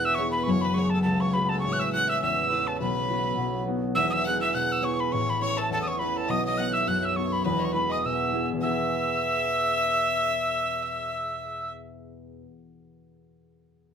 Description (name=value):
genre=celtic folk, Celtic reel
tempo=206 BPM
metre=4/4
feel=swing 57% on 8ths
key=E major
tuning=A4 = 440 Hz
part: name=breathy mellow mid whistle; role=melody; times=0.0-11.7 s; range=A5 to F#6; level=-27 LUFS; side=right 1 dB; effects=slapback echo
part: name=clear fiddle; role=second line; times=0.0-11.7 s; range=A4 to F#5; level=-31 LUFS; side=left 3 dB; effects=none
part: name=concert harp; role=accompaniment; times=0.0-12.5 s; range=E1 to B5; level=-28 LUFS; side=equal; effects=none
room=moderate small room reverb, RT60 0.5 s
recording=none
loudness=-23 LUFS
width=side -7 dB against mid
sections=0.0-8.6 A section; 8.6-10.9 B section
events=none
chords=0.5 F#madd9; 1.6 A; 2.8 Bsus4; 3.4 B; 4.0 E; 5.1 A; 6.3 B7; 7.4 E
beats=0.18 | 0.47 0.77 1.06 1.35 | 1.64 1.93 2.21 2.50 | 2.79 3.08 3.38 3.67 | 3.96 4.25 4.54 4.83 | 5.12 5.41 5.70 5.99 | 6.28 6.57 6.86 7.15 | 7.44 7.74 8.03 8.32 | 8.61 8.90 9.19 9.48 | 9.77 10.06 10.36 10.65